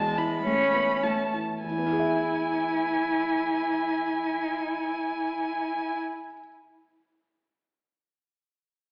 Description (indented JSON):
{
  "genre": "quick classical-period movement for piano trio",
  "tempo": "101 BPM",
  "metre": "3/4",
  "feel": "straight",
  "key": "E major",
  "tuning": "A4 = 439 Hz",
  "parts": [
    { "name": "rich violin", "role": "melody", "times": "0.0-6.0 s", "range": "G#5 to B5", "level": "-32 LUFS", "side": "equal", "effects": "none" },
    { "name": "warm cello", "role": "second line", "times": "0.0-6.0 s", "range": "G#3 to E4", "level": "-30 LUFS", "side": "equal", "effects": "none" },
    { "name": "dark grand piano", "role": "accompaniment", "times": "0.0-6.5 s", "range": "E2 to E5", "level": "-34 LUFS", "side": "equal", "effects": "none" }
  ],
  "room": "wet recital hall reverb, RT60 1.6 s",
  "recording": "recorded in a church or concert hall, AM radio sound",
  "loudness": "-27 LUFS",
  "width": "mono",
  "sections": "0.0-1.6 A section; 1.6-5.2 B section",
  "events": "slowing down 0.0-1.6",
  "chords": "0.0 A/E; 1.6 E"
}